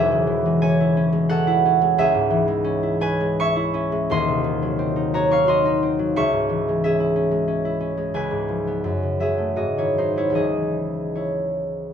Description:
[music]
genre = classical, solo harp piece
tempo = 73-94 BPM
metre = 3/4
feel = rubato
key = C# minor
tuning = A4 = 440 Hz
[part]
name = concert harp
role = solo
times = 0.0-11.9 s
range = Eb1 to C#6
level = -19 LUFS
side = equal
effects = none
[sound]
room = light reverb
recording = close, detailed microphones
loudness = -19 LUFS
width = side -8 dB against mid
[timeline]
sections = 0.0-11.9 A section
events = none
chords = 0.0 C#m/E; 2.0 C#m; 4.1 Cdim/Eb; 6.2 C#m; 8.1 C#7; 8.8 F#m; 9.6 G#7; 10.4 C#m

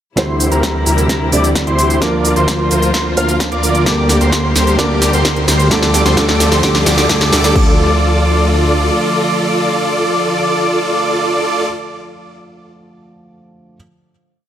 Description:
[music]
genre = EDM, festival progressive house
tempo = 130 BPM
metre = 4/4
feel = straight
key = D minor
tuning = A4 = 440 Hz
[part]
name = felt-muted upright piano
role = accompaniment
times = 0.2-13.8 s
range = D3 to D5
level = -19 LUFS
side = right 2 dB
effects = sidechain pumping, digital delay
[part]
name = warm chamber string section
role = sustained chords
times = 0.2-11.7 s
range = C3 to G4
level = -22 LUFS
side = left 2 dB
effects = sidechain pumping
[part]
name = wide unison lead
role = arpeggios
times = 0.2-11.7 s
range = Bb5 to F6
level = -20 LUFS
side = equal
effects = analog chorus, sidechain pumping, digital delay
[part]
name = supersaw chords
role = riff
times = 0.2-11.7 s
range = E4 to F5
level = -17 LUFS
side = right 1 dB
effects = sidechain pumping, low-pass filter, digital delay
[part]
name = wide detuned saw bass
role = bass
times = 0.2-8.9 s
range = D2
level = -16 LUFS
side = equal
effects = chorus, sidechain pumping
[part]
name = big-room dance drum kit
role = drums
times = 0.2-7.6 s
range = crash cymbal, hi-hat, shaker, snare drum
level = -18 LUFS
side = equal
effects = none
[part]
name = electronic kick drum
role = drums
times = 0.2-7.6 s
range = none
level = -19 LUFS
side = equal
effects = high-pass filter on kick, high-pass filter on room
[part]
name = riser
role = sound effects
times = 4.4-7.6 s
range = none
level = -27 LUFS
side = equal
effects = none
[sound]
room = moderate lush hall reverb, RT60 2.2 s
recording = none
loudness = -11 LUFS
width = side -10 dB against mid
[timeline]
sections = 0.2-7.6 build; 7.6-11.2 final chord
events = build-up 0.2-7.6; drum fill 0.2-7.6; filter sweep on supersaw synth 0.2-7.6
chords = 0.2 C/D; 2.0 Bb/D; 3.9 Gm/D; 5.7 Dm

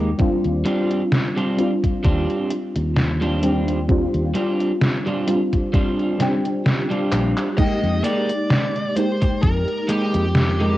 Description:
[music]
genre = vaporwave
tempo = 65 BPM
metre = 4/4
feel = swing 55% on 16ths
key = F dorian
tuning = A4 = 439 Hz
[part]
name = mellow FM electric piano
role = accompaniment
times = 0.0-10.8 s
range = G3 to G4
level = -22 LUFS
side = equal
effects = ensemble chorus, vintage 12-bit sampler grit, cassette tape, plate reverb, analog delay
[part]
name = electric guitar at the edge of break-up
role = riff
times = 0.0-10.8 s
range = G3 to G4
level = -24 LUFS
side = right 1 dB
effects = lush chorus, cassette tape, analog delay
[part]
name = fretless electric bass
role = bass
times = 0.0-10.8 s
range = Bb1 to F2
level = -22 LUFS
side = equal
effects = transformer saturation, analog chorus
[part]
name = detuned 8-bit digital drum machine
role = drums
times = 0.2-10.8 s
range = cabasa, crash cymbal, handclaps, hi-hat, snare drum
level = -22 LUFS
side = equal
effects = vintage 12-bit sampler grit, cassette tape
[part]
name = electronic kick drum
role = drums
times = 0.2-9.6 s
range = none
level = -20 LUFS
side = equal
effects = vintage 12-bit sampler grit, cassette tape
[part]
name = bluesy overdriven lead guitar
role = melody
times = 7.6-10.8 s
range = G4 to Eb5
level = -25 LUFS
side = equal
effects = distortion, cassette tape, plate reverb
[sound]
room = moderate studio reverb, RT60 0.7 s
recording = home recording on cassette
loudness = -18 LUFS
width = side -15 dB against mid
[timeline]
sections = 0.0-7.6 A section; 7.6-10.8 B section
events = kick drops out 6.7-7.6; drum fill 7.1-7.6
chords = 0.2 Ebmaj13; 7.6 Fm11

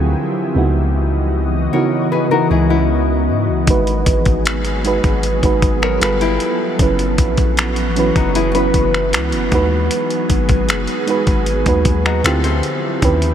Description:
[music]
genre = contemporary R&B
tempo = 77 BPM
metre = 4/4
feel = straight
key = G# minor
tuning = A4 = 440 Hz
[part]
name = mellow FM electric piano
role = accompaniment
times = 0.0-13.3 s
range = C#3 to B4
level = -19 LUFS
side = right 3 dB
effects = chorus
[part]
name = ethereal airy pad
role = sustained chords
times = 0.0-13.3 s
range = E3 to E5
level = -21 LUFS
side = equal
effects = ensemble chorus, built-in reverb
[part]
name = long sustained 808-style bass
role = bass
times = 0.0-13.3 s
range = F#1 to G#2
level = -19 LUFS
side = equal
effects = none
[part]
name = nylon-string guitar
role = arpeggios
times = 1.7-13.0 s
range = C#4 to C#5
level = -24 LUFS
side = left 7 dB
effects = diffuse ambient delay
[part]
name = dusty soul sampler-style drum kit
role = drums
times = 3.7-13.3 s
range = finger snaps, hi-hat, kick drum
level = -18 LUFS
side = equal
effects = none
[sound]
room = moderate huge ambient reverb, RT60 8.4 s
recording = dreamy mix soaked in reverb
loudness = -14 LUFS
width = side -9 dB against mid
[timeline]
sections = 0.0-13.3 A section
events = none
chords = 0.0 Dm11; 0.6 C#m11; 3.7 G#m7; 6.0 G9; 6.8 F#7sus4; 9.5 G#m7; 12.2 Dm11

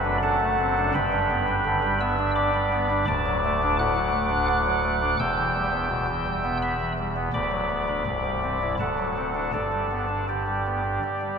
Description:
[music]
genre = classical, chorale-style piece for pipe organ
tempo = 84 BPM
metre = 3/4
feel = straight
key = G major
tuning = A4 = 440 Hz
[part]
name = chamber organ, soft reed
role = solo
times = 0.0-11.4 s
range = C1 to G6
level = -22 LUFS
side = equal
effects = none
[sound]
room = wet cathedral reverb, RT60 6.1 s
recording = none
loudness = -22 LUFS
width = side -6 dB against mid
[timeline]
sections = 0.0-11.4 A section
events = none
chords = 0.0 D7/F#; 1.0 G; 3.1 D; 5.2 Em; 7.3 Bm/D; 8.1 C; 8.8 D7; 9.5 G

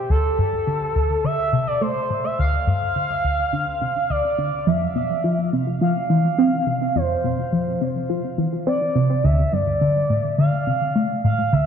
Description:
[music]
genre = ambient, sequencer-driven space music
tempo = 105 BPM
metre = 4/4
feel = straight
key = unclear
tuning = A4 = 440 Hz
[part]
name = expressive portamento lead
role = melody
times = 0.0-11.7 s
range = A4 to F5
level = -23 LUFS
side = right 1 dB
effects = wide subtle chorus, tape echo
[part]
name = tight sequenced synth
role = riff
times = 0.0-11.7 s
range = D2 to C4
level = -20 LUFS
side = equal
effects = chorus, phaser, tape echo
[sound]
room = wet concert hall reverb, RT60 2.5 s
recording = none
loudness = -18 LUFS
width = side -8 dB against mid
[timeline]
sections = 0.0-11.7 A section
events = filter sweep on synth arpeggio sound 0.0-11.7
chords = 0.1 Dm; 4.7 F5; 9.2 Dm

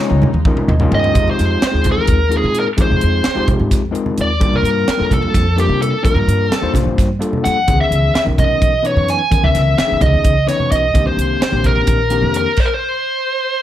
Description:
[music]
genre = electric jazz fusion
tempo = 257 BPM (eighths)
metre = 7/8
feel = straight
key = F dorian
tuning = A4 = 440 Hz
[part]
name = overdriven tine electric piano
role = accompaniment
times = 0.0-12.5 s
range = Eb3 to G5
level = -20 LUFS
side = left 3 dB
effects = auto-pan
[part]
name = warm chamber string section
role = sustained chords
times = 0.0-1.1 s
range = Db3 to Eb4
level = -32 LUFS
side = equal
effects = none
[part]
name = congas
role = percussion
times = 0.0-12.4 s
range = none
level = -23 LUFS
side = right 2 dB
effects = none
[part]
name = upright bass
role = bass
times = 0.1-12.4 s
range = Bb1 to C3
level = -18 LUFS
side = equal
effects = none
[part]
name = crisp fusion drum kit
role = drums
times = 0.1-12.7 s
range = crash cymbal, hi-hat, kick drum, snare drum, toms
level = -18 LUFS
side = equal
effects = none
[part]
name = bluesy overdriven lead guitar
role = melody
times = 0.9-13.6 s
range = G4 to Ab5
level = -17 LUFS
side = equal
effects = distortion, slapback echo
[sound]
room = light reverb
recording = none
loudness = -13 LUFS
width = side -12 dB against mid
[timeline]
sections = 0.0-1.1 A section; 1.1-13.6 B section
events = drum fill 0.0-1.1; tine electric piano fill 0.5-1.1; stop 12.6-13.6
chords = 0.0 Eb9sus4; 1.1 Fm9; 4.4 Gm9; 7.7 Dbm9; 10.9 Cm9

